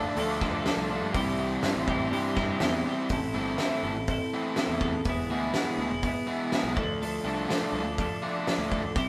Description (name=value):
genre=indie rock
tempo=123 BPM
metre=4/4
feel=straight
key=A minor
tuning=A4 = 439 Hz
part: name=hollow soft pad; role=sustained chords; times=0.0-3.1, 7.6-9.1 s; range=G4 to D6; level=-41 LUFS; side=equal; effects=none
part: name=thick fuzz guitar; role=riff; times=0.0-8.8 s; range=C3 to F4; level=-35 LUFS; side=equal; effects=distortion
part: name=twelve-string electric guitar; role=riff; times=0.0-9.1 s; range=F3 to A4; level=-33 LUFS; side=equal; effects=none
part: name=fuzz picked electric bass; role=bass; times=0.2-9.1 s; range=E1 to G2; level=-36 LUFS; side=equal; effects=overdrive
part: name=loose indie drum kit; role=drums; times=0.2-9.1 s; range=hi-hat, kick drum, snare drum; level=-34 LUFS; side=equal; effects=none
room=moderate stone room reverb, RT60 1.4 s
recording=band playing live in one room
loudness=-29 LUFS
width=mono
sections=0.0-3.1 A section; 3.1-9.1 B section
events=none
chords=0.0 Dm; 1.2 C; 3.1 Am; 5.1 E; 6.8 Dm